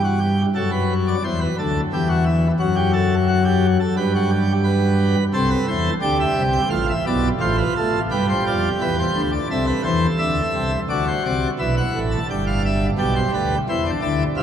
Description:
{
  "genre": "classical, baroque-style 3-part fugue for pipe organ",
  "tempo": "87 BPM",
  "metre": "4/4",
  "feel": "straight",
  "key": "C major",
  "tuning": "A4 = 441 Hz",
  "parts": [
    { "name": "pipe organ, plenum", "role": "solo", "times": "0.0-14.4 s", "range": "G1 to A5", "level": "-18 LUFS", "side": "equal", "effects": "none" }
  ],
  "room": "wet cathedral reverb, RT60 7.5 s",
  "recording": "in a vast, echoing space",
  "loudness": "-17 LUFS",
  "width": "side -9 dB against mid",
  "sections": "0.0-10.9 A section; 10.9-14.4 B section",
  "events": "none",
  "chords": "0.0 G; 1.2 C; 2.6 F#m; 4.0 G; 5.3 C; 6.7 F/A; 8.1 G; 9.5 C; 10.9 D7; 12.3 G; 13.7 C",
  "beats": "0.55 1.24 1.93 | 2.60 3.28 3.97 4.65 | 5.34 6.03 6.72 7.41 | 8.10 8.80 9.49 10.19 | 10.90 11.59 12.29 12.98 | 13.67 14.35"
}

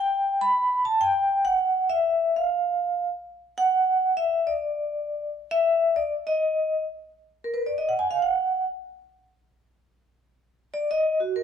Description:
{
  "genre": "jazz",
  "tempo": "134 BPM",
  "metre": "4/4",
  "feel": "swing 67% on 8ths",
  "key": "E minor",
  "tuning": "A4 = 444 Hz",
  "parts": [
    { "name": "vibraphone with medium hard mallets", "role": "solo", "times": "0.0-11.4 s", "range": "F#4 to B5", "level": "-22 LUFS", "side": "equal", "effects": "none" }
  ],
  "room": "light reverb",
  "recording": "dark, warm production, faint mains hum",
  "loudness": "-22 LUFS",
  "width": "side -8 dB against mid",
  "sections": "0.0-7.3 A section; 7.3-11.4 B section",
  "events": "vibraphone solo 7.3-11.4",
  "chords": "none",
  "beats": "| 0.11 0.56 1.01 1.46 | 1.91 2.35 2.80 3.25 | 3.70 4.14 4.59 5.04 | 5.49 5.94 6.38 6.83 | 7.28 7.73 8.18 8.63 | 9.08 9.53 9.97 10.42 | 10.87 11.32"
}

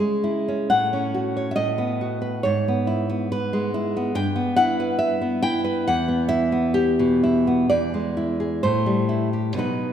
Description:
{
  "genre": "romantic piece for solo classical guitar",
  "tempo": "58-71 BPM",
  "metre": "2/4",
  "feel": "rubato",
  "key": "E major, E minor from 4.2 s",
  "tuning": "A4 = 441 Hz",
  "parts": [
    { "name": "nylon-string guitar", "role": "solo", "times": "0.0-9.9 s", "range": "E2 to G5", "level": "-20 LUFS", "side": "equal", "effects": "none" }
  ],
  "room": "wet scoring stage reverb, RT60 1.8 s",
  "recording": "recorded in a church or concert hall",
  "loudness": "-20 LUFS",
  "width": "side -9 dB against mid",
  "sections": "0.0-9.9 A section",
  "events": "none",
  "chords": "0.0 C#m; 0.7 F#m/A; 1.6 B7/A; 2.4 E/G#; 4.2 Em/G; 5.9 Em; 7.7 E7; 8.6 Am7",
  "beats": "| 0.68 1.56 | 2.43 3.31 | 4.17 5.02 | 5.89 6.76 | 7.71 8.63 | 9.60"
}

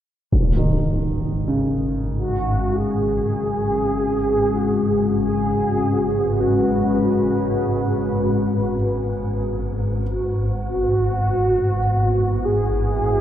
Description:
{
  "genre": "dark ambient drone",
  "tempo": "free time",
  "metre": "none",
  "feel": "none",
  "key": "unclear",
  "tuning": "A4 = 436 Hz",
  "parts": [
    { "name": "deep dark ambient pad", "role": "sustained chords", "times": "1.4-13.2 s", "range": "G#3 to B4", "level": "-23 LUFS", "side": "left 2 dB", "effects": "chorus, built-in reverb" },
    { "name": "swarming drone", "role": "drone", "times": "1.2-13.2 s", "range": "G#1 to G#2", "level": "-24 LUFS", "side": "equal", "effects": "built-in reverb" },
    { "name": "impact", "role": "percussion", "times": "0.3-0.6 s", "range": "none", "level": "-22 LUFS", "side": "equal", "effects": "low-pass filter on sfx" },
    { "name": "dark grand piano", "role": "arpeggios", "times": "0.6-11.8 s", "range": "C#3 to F#4", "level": "-28 LUFS", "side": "right 1 dB", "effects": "tape echo" },
    { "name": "mellow horn-like synth lead", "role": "melody", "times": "2.2-13.2 s", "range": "F#4 to G#4", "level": "-23 LUFS", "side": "right 1 dB", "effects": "ensemble chorus, tape echo" }
  ],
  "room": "wet cathedral reverb, RT60 5.4 s",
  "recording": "none",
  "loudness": "-18 LUFS",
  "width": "side -10 dB against mid",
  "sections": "0.3-13.2 A section",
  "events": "filter sweep on synth drone 0.3-13.2",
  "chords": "0.3 G#m; 10.0 Eadd9",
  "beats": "free time"
}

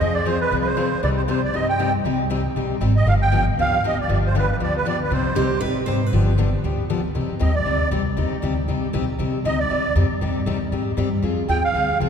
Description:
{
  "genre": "acoustic string swing (jazz manouche)",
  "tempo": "235 BPM",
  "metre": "4/4",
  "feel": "swing 56% on 8ths",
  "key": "C harmonic minor",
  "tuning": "A4 = 441 Hz",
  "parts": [
    { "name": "musette accordion", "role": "melody", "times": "0.0-12.0 s", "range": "B4 to G5", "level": "-24 LUFS", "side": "right 3 dB", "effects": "none" },
    { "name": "picked steel-string acoustic guitar", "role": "accompaniment", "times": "0.0-12.1 s", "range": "C3 to Ab4", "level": "-24 LUFS", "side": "left 4 dB", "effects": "none" },
    { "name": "upright bass", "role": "bass", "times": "0.0-12.1 s", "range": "G1 to Ab2", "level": "-22 LUFS", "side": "equal", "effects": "none" },
    { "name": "picked steel-string acoustic guitar", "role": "second line", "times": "5.4-6.6 s", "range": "G4 to C5", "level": "-28 LUFS", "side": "right 5 dB", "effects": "none" }
  ],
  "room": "wet cathedral reverb, RT60 4.7 s",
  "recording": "recorded in a church or concert hall",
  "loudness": "-18 LUFS",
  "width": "side -7 dB against mid",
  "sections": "0.0-7.2 A section; 7.2-12.1 B section",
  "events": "accordion solo 7.2-12.1",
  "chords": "0.0 Fm; 1.0 Cm; 3.1 G7; 5.1 Cm; 6.1 G7; 7.2 Cm; 11.2 Fm",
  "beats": "| 0.01 0.27 0.52 0.78 | 1.03 1.29 1.54 1.80 | 2.05 2.31 2.56 2.82 | 3.07 3.33 3.58 3.84 | 4.09 4.35 4.60 4.86 | 5.11 5.37 5.62 5.88 | 6.13 6.38 6.64 6.89 | 7.15 7.41 7.66 7.92 | 8.17 8.43 8.68 8.94 | 9.19 9.45 9.70 9.96 | 10.21 10.47 10.72 10.98 | 11.24 11.49 11.75 12.00"
}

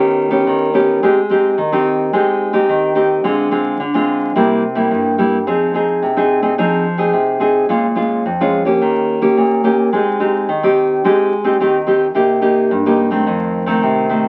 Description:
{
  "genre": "samba",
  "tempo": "108 BPM",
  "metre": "4/4",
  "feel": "straight",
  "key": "C minor, F minor from 5.5 s",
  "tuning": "A4 = 437 Hz",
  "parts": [
    { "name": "nylon-string guitar", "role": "solo", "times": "0.0-14.3 s", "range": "F2 to Ab4", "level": "-15 LUFS", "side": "equal", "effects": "none" }
  ],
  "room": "wet studio reverb, RT60 0.5 s",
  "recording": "very old 78 rpm record, vinyl crackle, nothing above 10.5 kHz",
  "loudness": "-15 LUFS",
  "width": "mono",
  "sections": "0.0-5.5 A section; 5.5-14.3 B section",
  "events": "none",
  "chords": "0.0 Ebaug7; 1.0 Abmaj7; 3.2 Dm7b5; 4.4 C7; 5.5 Fm7; 7.7 Bbm7; 8.8 Eb7; 9.9 Abmaj7; 12.2 Cm7; 13.3 F7",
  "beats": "0.46 | 1.01 1.57 2.13 2.69 | 3.24 3.80 4.36 4.92 | 5.47 6.03 6.59 7.14 | 7.70 8.26 8.82 9.37 | 9.93 10.49 11.05 11.61 | 12.16 12.72 13.28 13.84"
}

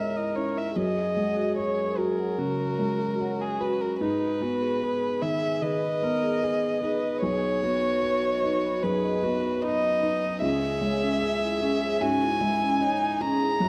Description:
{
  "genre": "neoclassical piano and strings",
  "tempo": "75 BPM",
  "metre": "4/4",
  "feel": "rubato",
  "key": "C# dorian",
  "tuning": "A4 = 440 Hz",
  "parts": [
    { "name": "warm violin", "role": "melody", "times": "0.0-13.7 s", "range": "G#4 to A#5", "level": "-29 LUFS", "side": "equal", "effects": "none" },
    { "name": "dark upright piano", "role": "accompaniment", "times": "0.0-13.7 s", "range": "B1 to E5", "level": "-32 LUFS", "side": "equal", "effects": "none" },
    { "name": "warm viola", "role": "accompaniment", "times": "0.0-13.7 s", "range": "D#4 to B4", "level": "-34 LUFS", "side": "equal", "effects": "none" },
    { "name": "vibraphone with medium mallets", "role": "arpeggios", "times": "0.0-13.7 s", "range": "C#4 to B5", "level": "-36 LUFS", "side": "equal", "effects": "none" }
  ],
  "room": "moderate concert hall reverb, RT60 1.7 s",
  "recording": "none",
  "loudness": "-26 LUFS",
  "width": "mono",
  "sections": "0.0-13.7 A section",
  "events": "none",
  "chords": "0.0 C#madd9; 0.8 F#add9; 4.0 G#m; 7.2 B; 10.4 C#madd9",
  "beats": "| 0.76 1.57 2.39 3.20 | 4.01 4.82 5.62 6.42 | 7.22 8.03 8.83 9.62 | 10.42 11.21 12.01 12.80 | 13.60"
}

